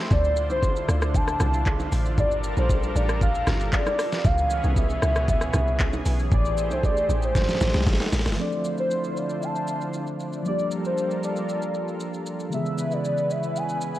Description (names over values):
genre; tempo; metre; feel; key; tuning
amapiano; 116 BPM; 4/4; straight; D minor; A4 = 440 Hz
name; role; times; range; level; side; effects
lush unison pad; sustained chords; 0.0-14.0 s; B2 to C5; -32 LUFS; equal; chorus
warm velvety synth lead; melody; 0.1-14.0 s; C5 to A5; -27 LUFS; equal; chorus, digital delay
deep log drum bass; bass; 0.1-8.4 s; G1 to D2; -25 LUFS; equal; none
smooth R&B drum kit; drums; 0.1-14.0 s; handclaps, hi-hat, kick drum, rim click, shaker, snare drum; -25 LUFS; equal; none
congas and bongos; percussion; 0.1-8.1 s; none; -34 LUFS; right 2 dB; none
mellow tine electric piano; accompaniment; 8.4-14.0 s; C#3 to A4; -29 LUFS; equal; medium stereo tremolo
room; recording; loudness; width
light reverb; worn, warbling old tape, cassette tape, warbly pitch drift; -22 LUFS; side -14 dB against mid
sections
0.0-8.4 A section; 8.4-14.0 B section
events
drop 0.0-8.4; drum fill 7.4-8.4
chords
0.1 Dm7; 2.2 Gm7; 4.2 C#m7; 6.3 Am7; 8.4 Dm7; 10.5 Gm7; 12.5 C#m7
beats
| 0.11 0.63 1.14 1.66 | 2.18 2.69 3.21 3.73 | 4.25 4.76 5.28 5.80 | 6.32 6.83 7.35 7.87 | 8.38 8.90 9.42 9.94 | 10.45 10.97 11.49 12.01 | 12.52 13.04 13.56